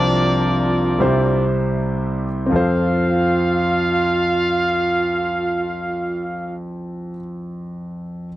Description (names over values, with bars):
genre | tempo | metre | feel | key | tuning
gospel | 37-47 BPM (dotted quarters) | 6/8 | straight | F major | A4 = 440 Hz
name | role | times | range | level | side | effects
clear horn section | melody | 0.0-6.5 s | D4 to F5 | -19 LUFS | right 1 dB | none
warm grand piano | accompaniment | 0.0-8.3 s | C2 to A5 | -20 LUFS | equal | none
room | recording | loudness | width
light reverb | dry, close 1970s-style studio recording | -17 LUFS | side -15 dB against mid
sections
0.0-2.5 A section; 2.5-5.8 B section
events
slowing down 0.0-2.5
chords
0.0 F/C; 1.0 C; 2.5 F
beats
1.01 | 2.51 4.14